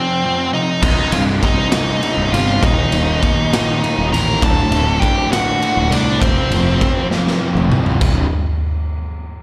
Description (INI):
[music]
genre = quiet-loud alternative rock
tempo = 67 BPM (dotted quarters)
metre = 6/8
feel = straight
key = C dorian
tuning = A4 = 440 Hz
[part]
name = nasal lead guitar with a parked wah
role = melody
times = 0.0-7.1 s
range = C4 to Bb5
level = -21 LUFS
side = equal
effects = overdrive
[part]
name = crunchy overdriven guitar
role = riff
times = 0.0-8.3 s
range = C2 to F3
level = -24 LUFS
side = equal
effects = slapback echo
[part]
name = fuzz guitar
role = riff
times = 0.8-8.3 s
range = C2 to Eb4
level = -26 LUFS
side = equal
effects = none
[part]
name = fuzz fingered electric bass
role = bass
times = 0.8-8.3 s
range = C1 to C2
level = -21 LUFS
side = equal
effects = overdrive
[part]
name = raw garage drum kit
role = drums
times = 0.8-8.2 s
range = crash cymbal, kick drum, ride cymbal, snare drum, toms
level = -21 LUFS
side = equal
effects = none
[sound]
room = little or no reverb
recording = live gig heard through the venue's PA, recital hall reverb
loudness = -16 LUFS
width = mono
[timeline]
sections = 0.0-8.0 A section; 8.0-9.4 B section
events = drum fill 7.1-8.0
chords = 0.0 F5; 0.8 Cm; 2.6 Eb5; 4.4 D; 6.2 F5; 8.0 Cm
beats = | 0.83 1.73 | 2.62 3.52 | 4.42 5.32 | 6.22 7.11 | 8.01